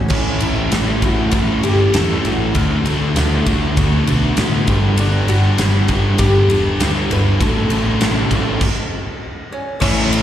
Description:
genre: quiet-loud alternative rock.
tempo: 99 BPM.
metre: 4/4.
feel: straight.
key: A mixolydian.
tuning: A4 = 442 Hz.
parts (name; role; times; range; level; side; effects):
picked steel-string acoustic guitar; arpeggios; 0.0-5.0 s; A2 to F#4; -28 LUFS; right 1 dB; none.
oud; melody; 0.1-10.2 s; C#4 to B4; -23 LUFS; left 1 dB; slapback echo, digital delay.
thick fuzz guitar; riff; 0.1-10.2 s; A2 to A4; -18 LUFS; equal; distortion, slapback echo.
overdriven picked electric bass; bass; 0.1-10.2 s; E1 to A2; -18 LUFS; equal; none.
huge arena drum kit; drums; 0.1-10.2 s; crash cymbal, kick drum, ride cymbal, snare drum; -20 LUFS; equal; none.
cranked stack guitar; riff; 9.8-10.2 s; A2 to A3; -19 LUFS; left 2 dB; overdrive.
room: little or no reverb.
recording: live gig heard through the venue's PA, recital hall reverb.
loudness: -14 LUFS.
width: side -11 dB against mid.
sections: 0.1-9.8 A section.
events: stop 8.6-9.8.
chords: 0.1 A; 2.5 D6; 4.7 Gsus2; 7.4 F#m/A.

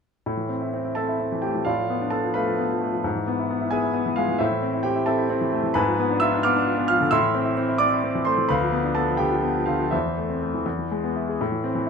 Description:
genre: classical, virtuoso piano study.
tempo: 87 BPM (dotted quarters).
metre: 6/8.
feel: rubato.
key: A minor.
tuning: A4 = 440 Hz.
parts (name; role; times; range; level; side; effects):
clear concert grand piano; solo; 0.3-11.9 s; D2 to E#6; -21 LUFS; equal; none.
room: moderate studio reverb, RT60 0.6 s.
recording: minimal, uncompressed stereo recording.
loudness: -21 LUFS.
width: side -6 dB against mid.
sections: 0.3-11.4 A section.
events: none.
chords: 0.3 Am; 1.7 Bm7b5/A; 3.0 E/G#; 4.4 Am; 5.8 G#dim7; 7.1 Am; 8.5 Bdim/D; 9.9 Am/E; 10.7 E.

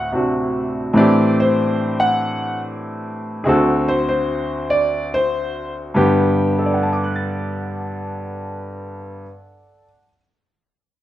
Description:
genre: jazz.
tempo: 96 BPM.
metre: 4/4.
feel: swing 67% on 8ths.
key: G major.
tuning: A4 = 439 Hz.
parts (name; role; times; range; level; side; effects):
clear baby grand piano; solo; 0.0-10.2 s; D2 to A6; -17 LUFS; equal; none.
room: light reverb.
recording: minimal, uncompressed stereo recording.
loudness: -16 LUFS.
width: side -13 dB against mid.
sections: 0.0-6.0 A section; 6.0-8.5 B section.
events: none.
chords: 0.0 D7; 1.0 Am7; 3.5 D7; 6.0 Gmaj7.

